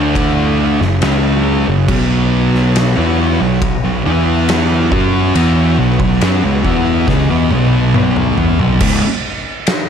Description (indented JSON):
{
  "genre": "stoner and doom metal",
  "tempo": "69 BPM",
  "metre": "4/4",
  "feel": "straight",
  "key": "unclear",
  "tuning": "A4 = 440 Hz",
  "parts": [
    { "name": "string machine, violins", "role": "sustained chords", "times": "0.0-8.8 s", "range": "D3 to F#5", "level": "-26 LUFS", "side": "equal", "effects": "ensemble chorus" },
    { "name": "thick fuzz guitar", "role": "riff", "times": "0.0-9.1 s", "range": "C#2 to F#4", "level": "-16 LUFS", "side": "left 8 dB", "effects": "distortion" },
    { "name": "thick fuzz guitar", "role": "riff", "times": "0.0-9.1 s", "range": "C#2 to F#4", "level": "-16 LUFS", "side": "right 10 dB", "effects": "distortion" },
    { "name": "vintage muted picked electric bass", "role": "bass", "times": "0.0-9.1 s", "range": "C#1 to F#2", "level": "-18 LUFS", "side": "equal", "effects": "overdrive" },
    { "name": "oversized low-tuned drum kit", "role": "drums", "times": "0.2-9.9 s", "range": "crash cymbal, kick drum, ride cymbal, snare drum, toms", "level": "-18 LUFS", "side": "equal", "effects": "none" }
  ],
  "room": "small room ambience",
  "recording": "none",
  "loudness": "-11 LUFS",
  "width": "side -7 dB against mid",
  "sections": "0.0-8.8 A section; 8.8-9.9 B section",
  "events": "drum fill 7.1-8.8",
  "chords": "0.0 D5; 0.8 F#5; 1.9 B5; 4.1 E5; 4.9 B5; 8.8 C#5",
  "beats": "0.16 1.02 | 1.89 2.75 3.62 4.48 | 5.35 6.21 7.08 7.95 | 8.81 9.68"
}